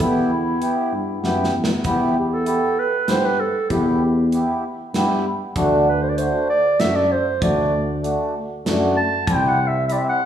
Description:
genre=klezmer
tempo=97 BPM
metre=3/4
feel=straight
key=E minor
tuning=A4 = 440 Hz
part: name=mellow clarinet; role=melody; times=0.0-10.3 s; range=E4 to A5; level=-21 LUFS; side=right 2 dB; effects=none
part: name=mellow accordion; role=accompaniment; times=0.0-10.2 s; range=A3 to G4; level=-22 LUFS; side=equal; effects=none
part: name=mellow tuba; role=bass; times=0.0-10.0 s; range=C2 to G2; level=-23 LUFS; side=left 1 dB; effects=none
part: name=gated 80s drum kit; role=drums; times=0.0-10.0 s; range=hi-hat, kick drum, snare drum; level=-25 LUFS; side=right 1 dB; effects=none
room=wet recital hall reverb, RT60 1.6 s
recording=recorded in a church or concert hall, small room ambience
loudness=-17 LUFS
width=side -9 dB against mid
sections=0.0-1.9 A section; 1.9-10.3 B section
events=drum fill 1.2-1.9; clarinet solo 1.9-10.3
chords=0.0 Em; 5.6 D; 9.3 C

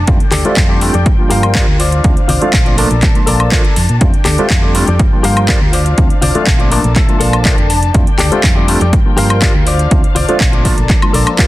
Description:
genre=filtered disco house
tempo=122 BPM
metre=4/4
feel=straight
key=unclear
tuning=A4 = 443 Hz
part: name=dark symphonic string section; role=sustained chords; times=0.0-11.5 s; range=D4 to Bb5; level=-22 LUFS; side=left 1 dB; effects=sidechain pumping, low-pass filter
part: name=hollow-body short-scale fingered electric bass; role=bass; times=0.0-11.2 s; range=F1 to Bb2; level=-15 LUFS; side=equal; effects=tube saturation, sidechain pumping, low-pass filter
part: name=barky tine electric piano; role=accompaniment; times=0.1-11.5 s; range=F3 to F4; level=-18 LUFS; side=right 1 dB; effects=medium stereo tremolo, phaser, sidechain pumping, low-pass filter
part: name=electronic kick drum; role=drums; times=0.1-11.5 s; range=none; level=-12 LUFS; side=equal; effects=overdrive
part: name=house drum kit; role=drums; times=0.1-11.5 s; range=handclaps, hi-hat, woodblock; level=-18 LUFS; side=equal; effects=overdrive, sidechain pumping on hats, sidechain pumping on perc
part: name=tambourine and congas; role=percussion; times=0.1-11.5 s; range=none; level=-24 LUFS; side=left 2 dB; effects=sidechain pumping on perc, low-pass filter on perc
part: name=direct-recorded clean electric guitar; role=riff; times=0.3-11.5 s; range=F4 to A5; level=-20 LUFS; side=left 4 dB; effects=sidechain pumping, low-pass filter
room=digital ambience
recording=dense, heavily limited modern master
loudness=-9 LUFS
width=side -16 dB against mid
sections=0.0-11.5 A section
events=clean electric guitar fill 6.5-7.9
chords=0.1 F69; 1.1 Gm7; 1.8 Dm7; 2.8 Bbmaj7; 4.0 F69; 5.0 Gm7; 5.7 Dm7; 6.7 Bbmaj7; 7.9 F69; 8.9 Gm7; 9.7 Dm7; 10.7 Bbmaj7

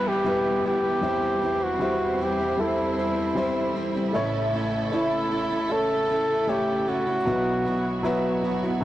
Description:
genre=pop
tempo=77 BPM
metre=4/4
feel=straight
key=unclear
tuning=A4 = 440 Hz
part: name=warm flugelhorn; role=melody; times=0.0-8.4 s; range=E4 to A4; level=-25 LUFS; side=equal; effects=none
part: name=warm upright piano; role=accompaniment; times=0.0-8.8 s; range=A1 to C#5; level=-27 LUFS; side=left 2 dB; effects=none
part: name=warm studio string section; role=sustained chords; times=0.0-8.8 s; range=E2 to C5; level=-32 LUFS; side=right 2 dB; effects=none
part: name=fingerpicked plugged-in steel-string acoustic guitar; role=arpeggios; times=0.0-8.8 s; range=E2 to F#4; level=-31 LUFS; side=right 2 dB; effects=digital delay
part: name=downlifter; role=sound effects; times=0.0-4.1 s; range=none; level=-40 LUFS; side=equal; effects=none
room=light reverb, small room ambience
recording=blown-out, overdriven recording, overdrive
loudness=-22 LUFS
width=side -14 dB against mid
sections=0.0-8.8 A section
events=none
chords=0.0 Em; 1.0 C/E; 4.1 A; 7.3 Bsus4

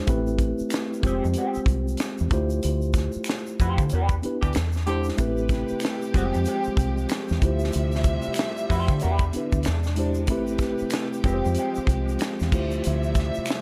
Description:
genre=R&B, neo-soul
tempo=94 BPM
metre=4/4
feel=swing 60% on 16ths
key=unclear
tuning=A4 = 440 Hz
part: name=mellow tine electric piano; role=accompaniment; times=0.0-13.6 s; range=G3 to C5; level=-30 LUFS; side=equal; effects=none
part: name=deep dub fingered electric bass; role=bass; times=0.1-13.4 s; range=F1 to D3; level=-28 LUFS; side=equal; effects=none
part: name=tight funk drum kit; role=drums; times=0.1-13.6 s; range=crash cymbal, hi-hat, kick drum, snare drum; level=-28 LUFS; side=equal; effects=none
part: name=tube shaker and finger snaps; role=percussion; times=0.1-13.6 s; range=none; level=-42 LUFS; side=equal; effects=none
part: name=electric guitar through a small old amp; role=second line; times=0.7-13.6 s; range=Ab3 to C5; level=-34 LUFS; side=equal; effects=wah
part: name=clear horn section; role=stabs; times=4.4-5.1 s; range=D3 to G4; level=-32 LUFS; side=equal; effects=none
part: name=warm studio string section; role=sustained chords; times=5.2-13.6 s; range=C3 to E5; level=-35 LUFS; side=equal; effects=none
room=small room ambience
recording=none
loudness=-25 LUFS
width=mono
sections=0.0-13.6 A section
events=band accent 2.6-5.2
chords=0.1 Am9; 1.0 Fmadd9; 2.3 Dm11; 3.9 Em7; 4.5 E7alt; 5.2 Am9; 6.1 Fmadd9; 7.4 Dm11; 9.0 Em7; 9.7 E7alt; 10.3 Am9; 11.2 Fmadd9; 12.5 Dm11

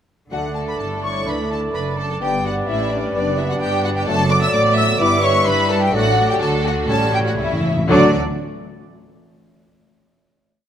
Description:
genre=quick classical-period movement for symphony orchestra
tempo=127 BPM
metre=4/4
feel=rubato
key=D major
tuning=A4 = 440 Hz
part: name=warm studio violin section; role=melody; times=0.3-8.2 s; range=D5 to E6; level=-24 LUFS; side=left 3 dB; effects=none
part: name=dark clarinet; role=second line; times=0.3-8.1 s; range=A4 to B4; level=-27 LUFS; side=left 3 dB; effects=none
part: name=mellow hollow silver concert flute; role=second line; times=0.3-8.2 s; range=F#4 to E6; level=-25 LUFS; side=left 1 dB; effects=none
part: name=warm oboe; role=second line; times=0.3-8.1 s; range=C#5 to E5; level=-28 LUFS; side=right 2 dB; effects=none
part: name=warm studio violin section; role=second line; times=0.3-8.2 s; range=D4 to E5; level=-25 LUFS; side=equal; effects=none
part: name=mellow bassoon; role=accompaniment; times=0.3-8.1 s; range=F#3 to A3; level=-27 LUFS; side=right 1 dB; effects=none
part: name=rich studio viola section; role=accompaniment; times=0.3-8.2 s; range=F#3 to F#4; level=-27 LUFS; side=right 2 dB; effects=none
part: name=mellow French horn section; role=sustained chords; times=0.3-8.1 s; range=F#3 to E4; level=-27 LUFS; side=left 3 dB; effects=none
part: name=clear studio cello section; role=bass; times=0.3-8.2 s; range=D2 to G3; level=-25 LUFS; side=equal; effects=none
part: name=dark studio double bass section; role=bass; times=0.3-8.2 s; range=F#1 to G2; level=-25 LUFS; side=right 3 dB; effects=none
part: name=timpani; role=percussion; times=0.3-1.0, 6.9-8.1 s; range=A2 to D3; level=-25 LUFS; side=left 1 dB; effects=none
room=moderate scoring stage reverb, RT60 1.8 s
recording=close, detailed microphones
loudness=-16 LUFS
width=side -9 dB against mid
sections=0.3-7.9 A section; 7.9-9.8 final chord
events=timpani fill 6.9-7.9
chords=0.3 D; 2.2 G; 4.1 D/F#; 5.0 Em7/G; 5.9 D/A; 6.9 A7; 7.9 D

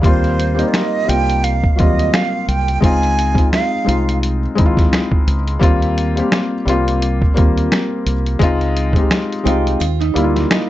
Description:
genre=lo-fi hip hop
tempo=86 BPM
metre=4/4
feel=swing 58% on 16ths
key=Eb mixolydian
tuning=A4 = 440 Hz
part: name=breathy jazz flute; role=melody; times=0.0-4.2 s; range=C5 to Ab5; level=-20 LUFS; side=right 5 dB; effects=slapback echo
part: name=felt-muted upright piano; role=accompaniment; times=0.0-10.7 s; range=Gb3 to F5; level=-18 LUFS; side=left 3 dB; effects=cassette tape
part: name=deep dub fingered electric bass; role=bass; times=0.0-10.4 s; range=C2 to Eb2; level=-18 LUFS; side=equal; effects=none
part: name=lo-fi sampler-style drum kit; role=drums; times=0.0-10.7 s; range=finger snaps, hi-hat, kick drum, snare drum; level=-16 LUFS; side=equal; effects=none
part: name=nylon-string guitar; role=second line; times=9.5-10.7 s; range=Eb4 to G4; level=-22 LUFS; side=right 15 dB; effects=slapback echo
room=light reverb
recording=dark, warm production, nothing above 7.9 kHz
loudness=-13 LUFS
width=side -14 dB against mid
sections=0.0-10.7 A section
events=kick muted 9.8-10.7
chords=0.0 Eb6; 2.8 Dbmaj7; 5.6 Eb6; 8.4 Dbmaj7; 9.8 Ebmaj7

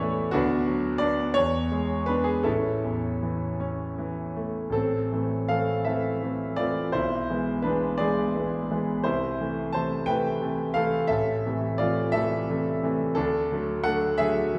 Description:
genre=classical, romantic character piece for solo piano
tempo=51-61 BPM (dotted quarters)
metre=6/8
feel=rubato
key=A major, A minor from 4.7 s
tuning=A4 = 440 Hz
part: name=warm concert grand piano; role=solo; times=0.0-14.6 s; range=A1 to A5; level=-26 LUFS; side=equal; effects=none
room=wet recital hall reverb, RT60 1.5 s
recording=heard from further back in the room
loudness=-27 LUFS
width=mono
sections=0.0-4.7 A section; 4.7-14.6 B section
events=none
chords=0.3 Bm/D; 1.4 E7; 2.5 A; 4.7 Am; 6.9 E7/B; 9.0 Am/C; 11.1 Am; 13.2 D

